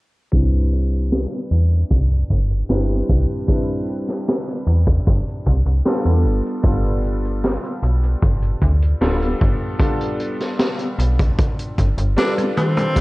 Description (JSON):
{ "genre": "vaporwave", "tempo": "76 BPM", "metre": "4/4", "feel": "straight", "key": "C major", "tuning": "A4 = 443 Hz", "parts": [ { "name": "warm electric grand piano", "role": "accompaniment", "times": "0.3-13.0 s", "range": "C3 to B4", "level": "-25 LUFS", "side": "equal", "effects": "lush chorus, vintage 12-bit sampler grit, tape echo" }, { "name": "slap-like FM bass", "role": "bass", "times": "0.3-13.0 s", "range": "D1 to E2", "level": "-17 LUFS", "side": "equal", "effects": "none" }, { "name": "kick drum", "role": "drums", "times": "0.3-13.0 s", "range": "none", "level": "-19 LUFS", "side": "equal", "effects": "none" }, { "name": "street-band drum kit", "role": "drums", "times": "0.3-13.0 s", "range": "cabasa, hi-hat, snare drum, toms", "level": "-22 LUFS", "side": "equal", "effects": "low-pass filter on hats, low-pass filter on toms, low-pass filter on snare, low-pass filter on perc, low-pass filter on room, gated reverb" }, { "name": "edgy tenor saxophone", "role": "melody", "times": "12.2-13.0 s", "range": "C4 to D4", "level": "-23 LUFS", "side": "left 1 dB", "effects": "none" } ], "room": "studio ambience", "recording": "cassette tape, low-pass filter", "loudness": "-16 LUFS", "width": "side -21 dB against mid", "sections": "0.3-13.0 A section", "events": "filter sweep on drum 0.3-13.0; filter sweep 0.3-13.0; drum fill 12.4-13.0", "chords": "0.3 Cmaj7; 6.3 G9" }